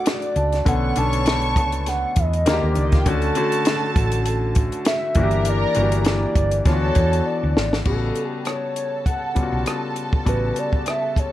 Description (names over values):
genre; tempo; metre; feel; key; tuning
lush 1970s-style soul; 100 BPM; 4/4; swing 54% on 16ths; unclear; A4 = 440 Hz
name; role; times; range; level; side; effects
hollow square lead; melody; 0.0-11.3 s; A4 to A5; -25 LUFS; right 1 dB; chorus
dark symphonic string section; second line; 0.0-11.3 s; A3 to D6; -29 LUFS; right 2 dB; none
warm concert grand piano; accompaniment; 0.0-11.3 s; C#3 to B4; -25 LUFS; left 4 dB; none
dark French horn section; sustained chords; 0.0-7.8 s; B2 to G4; -32 LUFS; right 2 dB; none
large celesta; texture; 0.0-2.4 s; F#5 to B5; -36 LUFS; right 3 dB; none
compact cocktail drum kit; drums; 0.1-11.3 s; crash cymbal, hi-hat, kick drum, rim click, snare drum; -22 LUFS; equal; none
hollow-body short-scale fingered electric bass; bass; 0.4-10.5 s; G1 to E2; -22 LUFS; equal; none
room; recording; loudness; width
studio reverb; none; -18 LUFS; side -14 dB against mid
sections
0.0-7.9 A section; 7.9-11.3 B section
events
drum fill 7.3-7.9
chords
0.0 Dmaj7; 0.7 Bm9; 2.5 Ebmaj7; 3.1 Dmaj7; 5.2 Gm6; 6.7 D69; 7.9 A13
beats
0.07 | 0.67 1.26 1.86 2.46 | 3.06 3.66 4.26 4.86 | 5.46 6.06 6.66 7.26 | 7.86 8.46 9.06 9.66 | 10.26 10.86